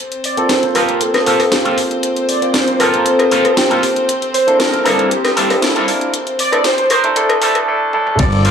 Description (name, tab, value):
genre	nu-disco, nu disco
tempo	117 BPM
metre	4/4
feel	straight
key	G dorian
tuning	A4 = 441 Hz
part	warm chamber string section	sustained chords	0.0-8.5 s	G3 to C5	-21 LUFS	left 2 dB	sidechain pumping
part	house drum kit	drums	0.1-8.5 s	crash cymbal, hi-hat, snare drum, toms	-19 LUFS	equal	none
part	wide unison lead	melody	0.3-8.5 s	E4 to D5	-18 LUFS	equal	wide subtle chorus, tape echo
part	barky tine electric piano	accompaniment	0.4-8.5 s	A3 to Bb4	-18 LUFS	right 1 dB	overdrive, sidechain pumping, slapback echo
part	electric guitar with an envelope filter	riff	0.6-8.5 s	G2 to C5	-19 LUFS	right 2 dB	lush chorus, low-pass filter, slapback echo
part	cowbell	percussion	0.8-7.7 s	none	-20 LUFS	left 2 dB	none
part	chorused synth bass	bass	8.2-8.5 s	G1	-13 LUFS	equal	sidechain pumping
part	electronic kick drum	drums	8.2-8.3 s	none	-16 LUFS	equal	none
room	moderate plate reverb, RT60 2.0 s, digital ambience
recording	high-pass filter, small room ambience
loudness	-12 LUFS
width	side -7 dB against mid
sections	0.0-8.2 A section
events	build-up 0.0-8.2; break 7.7-8.2; drum fill 7.9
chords	0.0 Gm11; 4.1 C13; 6.1 Am7